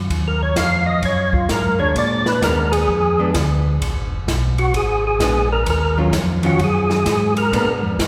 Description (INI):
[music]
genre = soul jazz organ trio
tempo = 129 BPM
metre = 4/4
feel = swing 66% on 8ths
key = Eb harmonic minor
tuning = A4 = 440 Hz
[part]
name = mellow tonewheel organ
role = bass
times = 0.0-8.1 s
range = F1 to Bb2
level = -22 LUFS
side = equal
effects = overdrive, chorus vibrato, slow rotary speaker
[part]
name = open jazz drum kit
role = drums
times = 0.1-8.1 s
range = hi-hat, kick drum, ride cymbal, snare drum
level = -27 LUFS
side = equal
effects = none
[part]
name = percussive tonewheel organ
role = melody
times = 0.3-7.7 s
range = F4 to F5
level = -22 LUFS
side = equal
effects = slow rotary speaker, overdrive, chorus vibrato
[part]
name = archtop guitar, miked and amplified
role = accompaniment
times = 1.8-7.8 s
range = Eb3 to F4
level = -26 LUFS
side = equal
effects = none
[sound]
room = wet concert hall reverb, RT60 2.2 s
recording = recorded in a church or concert hall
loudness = -18 LUFS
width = mono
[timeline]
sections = 0.0-8.1 A section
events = tonewheel organ solo 0.0-8.1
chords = 0.0 Ebm9; 2.0 Bb7b9; 5.7 Ebm9; 7.5 Bb7b9